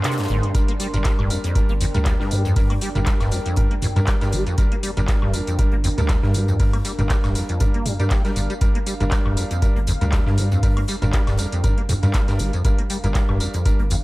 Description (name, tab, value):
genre	acid house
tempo	119 BPM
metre	4/4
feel	swing 55% on 16ths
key	G minor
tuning	A4 = 440 Hz
part	liquid acid bass	riff	0.0-14.0 s	F2 to Bb3	-24 LUFS	equal	ensemble chorus, cassette tape, sidechain pumping, tape echo
part	saturated sub bass	bass	0.0-14.0 s	D1 to G2	-23 LUFS	equal	sidechain pumping
part	electro analog drum machine	drums	0.0-14.0 s	handclaps, hi-hat, tambourine, toms, woodblock	-29 LUFS	equal	none
part	gated 80s drum kit	drums	0.0-14.0 s	hi-hat, snare drum	-40 LUFS	left 1 dB	high-pass filter on hats, high-pass filter on snare, high-pass filter on room
part	noise sweep	sound effects	0.0-0.5 s	none	-38 LUFS	left 1 dB	none
part	deep dark ambient pad	texture	0.0-14.0 s	D4 to C6	-32 LUFS	equal	chorus, built-in reverb, sidechain pumping
part	clear grand piano	stabs	0.5-13.8 s	G3 to Bb4	-29 LUFS	right 1 dB	tape echo
part	electronic kick drum	drums	0.5-13.8 s	none	-20 LUFS	equal	none
room	little or no reverb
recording	dark, warm production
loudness	-18 LUFS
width	side -20 dB against mid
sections	0.0-14.0 A section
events	break 0.0-0.5; noise sweep 0.0-0.5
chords	0.0 Gm